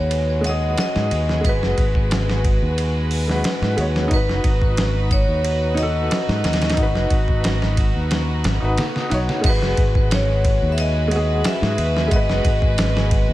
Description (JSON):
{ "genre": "trip hop", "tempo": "90 BPM", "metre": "4/4", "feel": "straight", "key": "G# minor", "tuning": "A4 = 440 Hz", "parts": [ { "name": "vibraphone with hard mallets", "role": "melody", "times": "0.0-13.3 s", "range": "B4 to E5", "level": "-25 LUFS", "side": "equal", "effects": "tape echo" }, { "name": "felt-muted upright piano", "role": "accompaniment", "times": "0.0-13.3 s", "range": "G#3 to C#5", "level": "-27 LUFS", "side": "equal", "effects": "tremolo, vintage 12-bit sampler grit, tape echo" }, { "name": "warm studio violin section", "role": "sustained chords", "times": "0.0-13.3 s", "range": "G#3 to B4", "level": "-29 LUFS", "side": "equal", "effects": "none" }, { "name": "fingered electric bass", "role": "bass", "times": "0.0-13.3 s", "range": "F#1 to G#2", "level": "-21 LUFS", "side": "equal", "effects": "none" }, { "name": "backwards swelling texture", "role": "texture", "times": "0.0-9.5 s", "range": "B4", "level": "-40 LUFS", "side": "right 1 dB", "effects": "none" }, { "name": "dusty soul sampler-style drum kit", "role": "drums", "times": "0.1-13.3 s", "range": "crash cymbal, hi-hat, kick drum, ride cymbal, snare drum", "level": "-21 LUFS", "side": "equal", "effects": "none" } ], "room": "digital ambience", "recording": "none", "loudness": "-17 LUFS", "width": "side -15 dB against mid", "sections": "0.0-9.4 A section; 9.4-13.3 B section", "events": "none", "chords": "0.0 G#m7; 4.1 B; 9.4 G#m7", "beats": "0.11 0.78 | 1.44 2.11 2.78 3.44 | 4.11 4.78 5.44 6.11 | 6.78 7.44 8.11 8.78 | 9.44 10.11 10.78 11.44 | 12.11 12.78" }